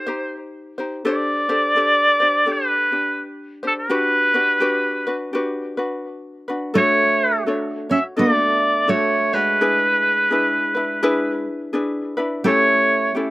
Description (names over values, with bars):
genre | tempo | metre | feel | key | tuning
Hawaiian | 84 BPM | 4/4 | swing 62% on 8ths | G major, D major from 6.8 s | A4 = 440 Hz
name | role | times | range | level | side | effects
clear oboe | melody | 0.0-13.1 s | A4 to E5 | -17 LUFS | equal | none
ukulele | accompaniment | 0.0-13.3 s | C#4 to C#5 | -23 LUFS | left 1 dB | none
picked steel-string acoustic guitar | second line | 6.8-13.1 s | G#3 to C#4 | -24 LUFS | right 3 dB | slapback echo
room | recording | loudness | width
light reverb | recorded outdoors, with no room sound | -17 LUFS | side -20 dB against mid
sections
0.0-6.8 A section; 6.8-13.3 B section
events
none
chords
0.0 Cm; 1.1 D7sus4; 3.9 Gmaj7; 6.8 Dmaj7; 9.6 E7; 12.4 A7